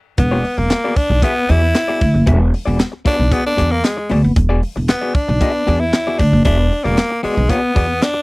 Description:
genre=funk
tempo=115 BPM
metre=4/4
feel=straight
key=E mixolydian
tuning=A4 = 440 Hz
part: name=raspy tenor saxophone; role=melody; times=0.2-8.2 s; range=G#3 to E4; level=-18 LUFS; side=equal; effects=none
part: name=electric guitar at the edge of break-up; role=accompaniment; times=0.2-8.2 s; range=B3 to E5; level=-21 LUFS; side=left 3 dB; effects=tremolo
part: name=upright bass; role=bass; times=0.2-8.0 s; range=E1 to E2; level=-15 LUFS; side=equal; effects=none
part: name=tight funk drum kit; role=drums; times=0.2-8.1 s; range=handclaps, hi-hat, kick drum, snare drum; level=-17 LUFS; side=equal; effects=none
room=little or no reverb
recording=dry, close 1970s-style studio recording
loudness=-13 LUFS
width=side -24 dB against mid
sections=0.2-8.2 A section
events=band accent 0.0; tenor saxophone solo 0.2-8.2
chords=0.2 E9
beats=| 0.18 0.70 1.23 1.75 | 2.27 2.80 3.32 3.84 | 4.37 4.89 5.41 5.93 | 6.46 6.98 7.50 8.02

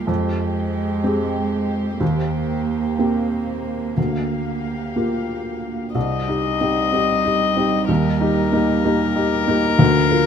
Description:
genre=neoclassical piano and strings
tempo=62 BPM (dotted quarters)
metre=6/8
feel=rubato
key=C minor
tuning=A4 = 440 Hz
part: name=warm cello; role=second line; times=0.0-10.3 s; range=F3 to Bb3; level=-25 LUFS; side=right 6 dB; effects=none
part: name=felt-muted upright piano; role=accompaniment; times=0.0-10.3 s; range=C2 to Bb4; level=-20 LUFS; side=equal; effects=none
part: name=warm chamber string section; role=sustained chords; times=0.0-10.3 s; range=Ab3 to F5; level=-31 LUFS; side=left 2 dB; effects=none
part: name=rich violin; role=melody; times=6.0-10.3 s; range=Bb4 to Eb5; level=-21 LUFS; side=left 7 dB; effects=none
room=light reverb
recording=minimal, uncompressed stereo recording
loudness=-18 LUFS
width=side -7 dB against mid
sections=0.0-6.0 A section; 6.0-10.3 B section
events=none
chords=0.1 Fmadd9; 2.0 Cm7/Eb; 4.0 Gm7/D; 6.0 Cm; 7.9 Eb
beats=| 0.08 1.04 | 2.01 2.99 | 3.97 4.96 | 5.95 6.93 | 7.89 8.85 | 9.79

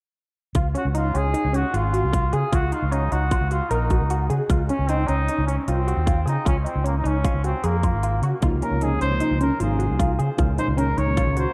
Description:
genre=progressive instrumental, band music in an uneven meter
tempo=153 BPM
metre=5/4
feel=straight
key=Db major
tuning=A4 = 440 Hz
part: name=overdriven fingered electric bass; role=bass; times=0.5-11.4 s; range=Ab1 to Db3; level=-26 LUFS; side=equal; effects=none
part: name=drum and bass drum kit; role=drums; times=0.5-11.5 s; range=hi-hat, kick drum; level=-26 LUFS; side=equal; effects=none
part: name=tight sequenced synth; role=arpeggios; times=0.6-11.5 s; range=Db4 to Bb4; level=-29 LUFS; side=equal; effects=chorus, phaser
part: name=warm trumpet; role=melody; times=0.8-11.5 s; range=Bb3 to Db5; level=-29 LUFS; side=equal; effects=diffuse ambient delay
part: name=tine electric piano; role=accompaniment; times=8.4-11.4 s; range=Bb2 to F4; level=-31 LUFS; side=equal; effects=lush chorus
room=moderate lush hall reverb, RT60 1.7 s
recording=dreamy mix soaked in reverb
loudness=-22 LUFS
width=mono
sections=0.6-11.5 A section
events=none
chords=0.6 Db; 2.5 Ebm7/Db; 4.5 F5/Db; 6.5 Bbm7/Db; 8.4 Db; 10.4 Eb7(no3)/Db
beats=| 0.56 0.95 1.34 1.74 2.13 | 2.53 2.92 3.31 3.71 4.10 | 4.50 4.89 5.28 5.67 6.07 | 6.46 6.86 7.25 7.64 8.03 | 8.43 8.82 9.21 9.60 9.99 | 10.39 10.78 11.17

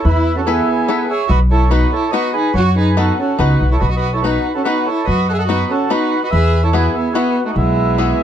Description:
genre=musette waltz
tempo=144 BPM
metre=3/4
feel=swing 53% on 8ths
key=unclear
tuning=A4 = 440 Hz
part: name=mellow accordion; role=melody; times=0.0-8.2 s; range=B3 to F#5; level=-18 LUFS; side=right 2 dB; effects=none
part: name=warm violin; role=second line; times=0.0-8.2 s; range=G#3 to A4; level=-20 LUFS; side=right 1 dB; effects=none
part: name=upright bass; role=bass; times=0.1-8.1 s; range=B1 to F#2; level=-15 LUFS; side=equal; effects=none
part: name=bluegrass banjo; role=accompaniment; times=0.5-8.2 s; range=B3 to B4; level=-20 LUFS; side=left 6 dB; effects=none
room=light reverb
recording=dark, warm production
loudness=-13 LUFS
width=side -9 dB against mid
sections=0.0-8.2 A section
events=none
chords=0.0 Asus2; 1.3 B; 6.3 Eadd9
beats=| 0.05 0.47 0.88 | 1.29 1.71 2.12 | 2.54 2.96 3.39 | 3.81 4.24 4.66 | 5.08 5.50 5.92 | 6.33 6.74 7.16 | 7.57 7.99

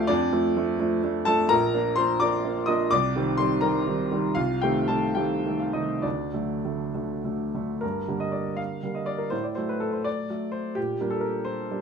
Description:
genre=classical, romantic character piece for solo piano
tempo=64-88 BPM (dotted quarters)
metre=6/8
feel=rubato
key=G minor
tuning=A4 = 439 Hz
part: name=warm baby grand piano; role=solo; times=0.0-11.8 s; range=Bb1 to Eb6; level=-23 LUFS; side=equal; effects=none
room=moderate large studio reverb, RT60 0.8 s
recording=minimal, uncompressed stereo recording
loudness=-23 LUFS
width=side -6 dB against mid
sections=0.0-7.8 A section; 7.8-11.8 B section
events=none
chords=0.1 Dm/F; 1.5 Bb; 2.9 Cm7; 4.4 Adim/C; 6.0 D; 7.8 Gm; 9.3 Am69; 10.8 Gm/Bb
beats=| 0.08 0.79 | 1.51 2.21 | 2.91 3.61 | 4.36 5.17 | 6.04 6.94 | 7.83 8.59 | 9.33 10.06 | 10.77 11.46

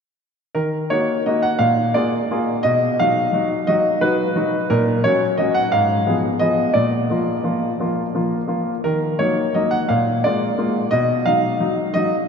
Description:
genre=classical-period piano sonatina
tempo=58 BPM (dotted quarters)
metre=6/8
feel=straight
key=Eb minor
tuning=A4 = 440 Hz
part: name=clear grand piano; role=solo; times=0.5-12.2 s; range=Ab2 to Gb5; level=-17 LUFS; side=equal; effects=none
room=wet cathedral reverb, RT60 5.7 s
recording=in a vast, echoing space, nothing above 7.6 kHz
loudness=-17 LUFS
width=side -6 dB against mid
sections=0.6-12.3 A section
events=none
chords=0.6 Ebm; 1.6 Bb7; 2.6 B; 4.7 Gb/Bb; 5.7 Fdim/Ab; 6.8 Bb; 8.8 Ebm; 9.9 Bb7; 10.9 B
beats=| 0.56 1.60 | 2.64 3.67 | 4.69 5.72 | 6.75 7.79 | 8.85 9.88 | 10.91 11.94

